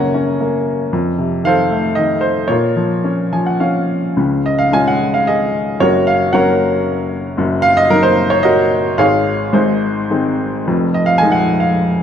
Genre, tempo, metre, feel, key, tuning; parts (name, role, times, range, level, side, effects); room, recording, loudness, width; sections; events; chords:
classical, lyrical solo piano; 112 BPM; 3/4; rubato; Bb minor, Db major from 4.2 s; A4 = 441 Hz
bright upright piano; solo; 0.0-12.0 s; F1 to Bb5; -13 LUFS; equal
moderate concert hall reverb, RT60 2.1 s; dark, warm production; -13 LUFS; side -8 dB against mid
0.0-4.2 A section; 4.2-12.0 B section
upright piano fill 3.0-4.2
0.0 Gb; 0.9 F7; 2.5 Bbm; 4.2 Db; 5.8 Gb; 7.4 Ebm/Gb; 9.0 Db/Ab; 9.5 Ab; 10.7 Fm7